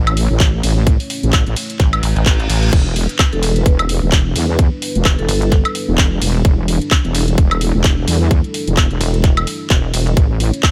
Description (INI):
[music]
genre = bass house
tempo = 129 BPM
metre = 4/4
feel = swing 57% on 16ths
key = E dorian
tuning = A4 = 440 Hz
[part]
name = dark analog pad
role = sustained chords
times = 0.0-10.7 s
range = G3 to C#5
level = -29 LUFS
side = equal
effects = chorus, vintage 12-bit sampler grit, sidechain pumping
[part]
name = wobble bass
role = bass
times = 0.0-10.5 s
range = E1 to E2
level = -18 LUFS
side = equal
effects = chorus, overdrive, sidechain pumping
[part]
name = garage drum kit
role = drums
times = 0.1-10.7 s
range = crash cymbal, handclaps, hi-hat, ride cymbal, woodblock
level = -22 LUFS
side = equal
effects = none
[part]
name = electronic kick drum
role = drums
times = 0.4-10.7 s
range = none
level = -16 LUFS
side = equal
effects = none
[part]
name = pulsing pluck wobble bass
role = bass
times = 1.8-5.6, 9.0-10.2 s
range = E1 to A1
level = -18 LUFS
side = equal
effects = chorus, tube saturation, sidechain pumping
[part]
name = reverse cymbal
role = sound effects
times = 2.0-2.7 s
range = none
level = -28 LUFS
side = equal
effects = none
[part]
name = vibraphone with medium hard mallets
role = melody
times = 3.3-5.5 s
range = A4 to B4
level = -27 LUFS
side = equal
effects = digital delay
[sound]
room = little or no reverb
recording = none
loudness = -15 LUFS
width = mono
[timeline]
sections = 0.0-10.7 A section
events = reverse cymbal 2.0-2.7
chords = 0.0 A; 2.7 Em7; 10.2 A